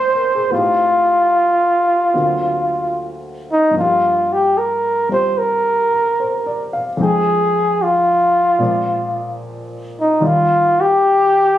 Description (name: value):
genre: jazz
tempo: 74 BPM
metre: 4/4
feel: swing 68% on 8ths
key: unclear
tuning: A4 = 440 Hz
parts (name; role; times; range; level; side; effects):
- mellow flugelhorn; melody; 0.0-11.6 s; Eb4 to C5; -14 LUFS; equal; none
- dark baby grand piano; accompaniment; 0.0-11.6 s; D2 to G5; -23 LUFS; left 1 dB; none
room: light reverb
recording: recorded on a phone in the room, studio ambience, compression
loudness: -13 LUFS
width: side -12 dB against mid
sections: 0.0-11.6 A section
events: none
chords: 0.0 Abmaj9; 0.5 Am7b5; 2.1 D7alt; 3.8 Gm7; 7.0 Fm9; 8.6 Bb7; 10.2 Ebmaj9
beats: | 0.51 1.32 2.13 2.94 | 3.75 4.56 5.37 6.18 | 6.99 7.79 8.60 9.41 | 10.21 11.02